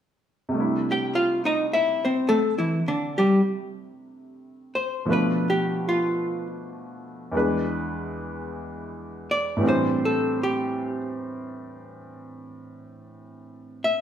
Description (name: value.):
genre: jazz ballad.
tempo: 53 BPM.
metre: 4/4.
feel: swing 66% on 8ths.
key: C major.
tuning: A4 = 437 Hz.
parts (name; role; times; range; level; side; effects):
clear upright piano; accompaniment; 0.5-14.0 s; E2 to C5; -27 LUFS; right 1 dB; none.
archtop guitar, miked and amplified; melody; 0.9-14.0 s; D3 to G5; -23 LUFS; left 1 dB; plate reverb.
room: wet studio reverb, RT60 0.9 s.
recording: heard from further back in the room.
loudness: -22 LUFS.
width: side -9 dB against mid.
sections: 0.5-14.0 A section.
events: hollow-body jazz guitar solo 0.5-14.0.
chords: 0.5 C69; 5.1 Bm7b5; 7.3 E7; 9.6 Am7.